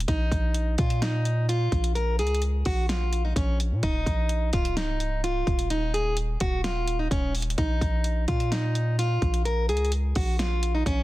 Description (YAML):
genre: hip hop, trap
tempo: 128 BPM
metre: 4/4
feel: half-time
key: Bb minor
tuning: A4 = 440 Hz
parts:
  - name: long sustained 808-style bass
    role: bass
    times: 0.0-11.0 s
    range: Db1 to Bb2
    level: -26 LUFS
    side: equal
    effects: none
  - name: pop drum kit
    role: drums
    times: 0.0-11.0 s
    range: hi-hat, kick drum, snare drum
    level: -28 LUFS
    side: equal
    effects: none
  - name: fingerpicked plugged-in steel-string acoustic guitar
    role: melody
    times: 0.1-11.0 s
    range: Db4 to Bb4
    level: -29 LUFS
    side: equal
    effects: low-pass filter, tape echo
room: little or no reverb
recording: dense, heavily limited modern master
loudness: -23 LUFS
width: side -17 dB against mid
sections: 0.0-11.0 A section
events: none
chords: 0.1 Bb5; 3.8 Eb5; 7.6 Bbm